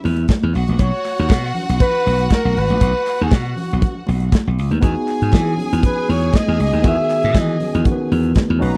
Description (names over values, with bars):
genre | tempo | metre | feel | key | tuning
disco | 119 BPM | 4/4 | straight | unclear | A4 = 440 Hz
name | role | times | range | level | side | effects
warm flugelhorn | melody | 0.0-7.9 s | F#4 to E5 | -23 LUFS | equal | none
bright studio violin section | second line | 0.0-8.8 s | E4 to A#5 | -31 LUFS | equal | none
slap bass | bass | 0.0-8.7 s | G#1 to E3 | -20 LUFS | equal | none
congas | percussion | 0.0-8.6 s | none | -29 LUFS | equal | none
modern studio drum kit | drums | 0.1-8.8 s | hi-hat, kick drum, snare drum | -17 LUFS | equal | none
group handclap | percussion | 0.3-8.5 s | none | -40 LUFS | equal | none
barky tine electric piano | accompaniment | 4.8-8.8 s | D#3 to B4 | -25 LUFS | equal | overdrive
room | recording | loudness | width
little or no reverb | dry, close 1970s-style studio recording | -17 LUFS | mono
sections
0.0-8.8 A section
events
none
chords
0.0 N.C.; 0.5 B5; 4.8 Emaj7